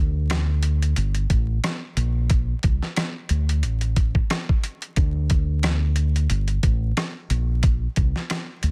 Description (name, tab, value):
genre	hip hop, boom-bap hip-hop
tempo	90 BPM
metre	4/4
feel	swing 56% on 16ths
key	unclear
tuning	A4 = 444 Hz
part	fingered electric bass	bass	0.0-8.7 s	G1 to D2	-24 LUFS	equal	none
part	boom bap sampler-style drum kit	drums	0.3-8.7 s	hi-hat, kick drum, rim click, snare drum	-25 LUFS	equal	none
room	little or no reverb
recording	dense, heavily limited modern master, vinyl crackle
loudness	-23 LUFS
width	mono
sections	0.0-8.7 A section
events	none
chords	none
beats	0.30 0.97 1.63 | 2.30 2.97 3.63 4.30 | 4.97 5.63 6.30 6.97 | 7.63 8.30